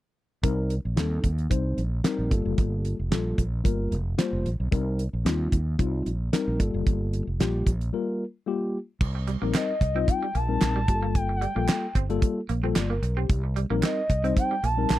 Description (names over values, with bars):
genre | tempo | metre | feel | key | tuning
early-eighties boogie funk | 112 BPM | 4/4 | straight | C dorian | A4 = 440 Hz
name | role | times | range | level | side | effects
mellow tine electric piano | accompaniment | 0.4-15.0 s | G3 to D5 | -29 LUFS | left 4 dB | auto-pan
fretless electric bass | bass | 0.4-15.0 s | F1 to Eb2 | -27 LUFS | equal | none
damped 70s drum kit | drums | 0.4-15.0 s | crash cymbal, handclaps, hi-hat, kick drum, snare drum | -24 LUFS | right 1 dB | none
electric guitar at the edge of break-up | riff | 9.2-14.7 s | G3 to C4 | -35 LUFS | right 7 dB | wide subtle chorus
group handclap | percussion | 9.5-15.0 s | none | -37 LUFS | right 7 dB | none
gliding portamento lead | melody | 9.6-15.0 s | Eb5 to A5 | -28 LUFS | equal | chorus, phaser, slapback echo
room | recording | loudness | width
little or no reverb | dry, close 1970s-style studio recording | -24 LUFS | side -15 dB against mid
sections
0.4-9.0 A section; 9.0-15.0 B section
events
break 7.9-9.0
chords
0.4 Cm7; 2.3 Gm9; 4.7 Cm7; 6.6 Gm9; 9.0 Cm7; 10.9 Gm9; 13.3 Cm7